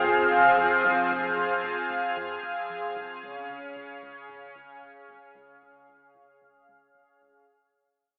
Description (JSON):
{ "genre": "synthwave", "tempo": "113 BPM", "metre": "4/4", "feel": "straight", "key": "unclear", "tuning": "A4 = 443 Hz", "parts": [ { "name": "analog string pad", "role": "sustained chords", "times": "0.0-7.4 s", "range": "Db3 to F5", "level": "-27 LUFS", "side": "equal", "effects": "ensemble chorus, cassette tape" }, { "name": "chorused synth bass", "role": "bass", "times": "0.0-7.4 s", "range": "F1 to F2", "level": "-46 LUFS", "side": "equal", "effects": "tube saturation" } ], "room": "moderate lush hall reverb, RT60 2.5 s", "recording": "home recording on cassette, telephone sound", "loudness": "-25 LUFS", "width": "mono", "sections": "0.0-7.5 A section", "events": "fade-out 0.0-7.5", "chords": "0.0 Fm; 3.2 Db" }